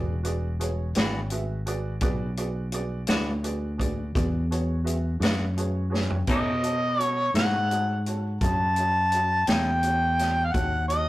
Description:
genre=slow blues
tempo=56 BPM (dotted quarters)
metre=12/8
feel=straight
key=E mixolydian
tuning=A4 = 440 Hz
part: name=warm upright piano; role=accompaniment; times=0.0-11.1 s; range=F#4 to F#5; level=-35 LUFS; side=right 3 dB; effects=none
part: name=fingered electric bass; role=bass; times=0.0-11.1 s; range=E1 to B2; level=-27 LUFS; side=equal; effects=none
part: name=vintage drum kit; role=drums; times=0.2-11.1 s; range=crash cymbal, hi-hat, kick drum, snare drum, toms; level=-29 LUFS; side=equal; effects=none
part: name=clean electric guitar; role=accompaniment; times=1.0-9.7 s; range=B2 to F#4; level=-31 LUFS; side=left 2 dB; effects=tremolo
part: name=mellow harmonica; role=melody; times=6.3-11.1 s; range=D#5 to A5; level=-24 LUFS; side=equal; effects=overdrive, tape echo
room=moderate studio ambience, RT60 0.5 s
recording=rough rehearsal-room recording, tube saturation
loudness=-23 LUFS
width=side -16 dB against mid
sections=0.0-11.1 A section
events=drum fill 5.9-6.3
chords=0.0 E9; 6.3 B9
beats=0.96 | 2.03 3.09 4.16 5.22 | 6.29 7.35 8.41 9.48 | 10.54

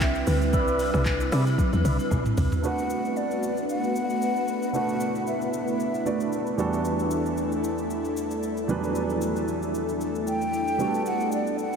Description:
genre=amapiano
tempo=114 BPM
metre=4/4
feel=swing 55% on 16ths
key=B phrygian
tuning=A4 = 441 Hz
part: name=breathy mellow concert flute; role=melody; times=0.0-6.5, 10.3-11.8 s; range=B4 to G5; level=-30 LUFS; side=left 1 dB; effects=ping-pong delay
part: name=airy breathy pad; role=sustained chords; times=0.0-11.8 s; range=G3 to B4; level=-28 LUFS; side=equal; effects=chorus, sidechain pumping
part: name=woody log drum bass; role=bass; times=0.0-2.5 s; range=B1 to C3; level=-25 LUFS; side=equal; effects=none
part: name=smooth R&B drum kit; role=drums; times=0.0-11.8 s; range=handclaps, hi-hat, kick drum, rim click, shaker, toms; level=-29 LUFS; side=equal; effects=none
part: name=agogo bells and woodblock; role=percussion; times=0.3-2.5 s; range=none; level=-40 LUFS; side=left 1 dB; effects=none
part: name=tonewheel organ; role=stabs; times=0.5-2.0 s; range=B4 to E5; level=-34 LUFS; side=equal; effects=overdrive, slow rotary speaker, ping-pong delay
part: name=warm baby grand piano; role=accompaniment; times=2.6-11.8 s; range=E2 to D5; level=-29 LUFS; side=right 3 dB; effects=none
room=wet huge ambient reverb, RT60 4.5 s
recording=dreamy mix soaked in reverb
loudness=-23 LUFS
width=side -6 dB against mid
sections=0.0-2.6 A section; 2.6-11.8 B section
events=drop 0.0-2.6; drum fill 1.6-2.6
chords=0.0 Cmaj9; 2.6 Bm7; 6.6 Em11; 10.8 Gmaj9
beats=0.01 | 0.53 1.06 1.58 2.11 | 2.64 3.16 3.69 4.22 | 4.74 5.27 5.80 6.32 | 6.85 7.38 7.90 8.43 | 8.95 9.48 10.01 10.53 | 11.06 11.59

